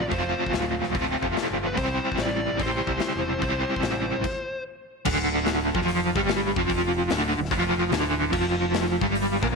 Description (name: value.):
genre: blues rock power trio and southern rock.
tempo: 146 BPM.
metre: 4/4.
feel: swing 67% on 8ths.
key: D minor from 5.1 s.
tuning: A4 = 442 Hz.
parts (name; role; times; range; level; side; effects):
fuzz lead guitar; melody; 0.0-4.6 s; B4 to D5; -32 LUFS; left 1 dB; distortion.
overdriven electric guitar; riff; 0.0-9.6 s; D2 to C5; -24 LUFS; right 1 dB; tremolo.
growling picked electric bass; bass; 0.0-9.6 s; D1 to C2; -32 LUFS; right 1 dB; overdrive.
big rock drum kit; drums; 0.1-9.5 s; crash cymbal, hi-hat, kick drum, snare drum; -31 LUFS; left 4 dB; none.
room: light reverb.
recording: 1960s-style stereo.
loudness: -22 LUFS.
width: side -4 dB against mid.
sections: 0.0-5.1 A section; 5.1-9.6 B section.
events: stop 4.2-5.1.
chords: 0.0 F; 1.8 C; 5.1 Dm; 8.3 Fsus24.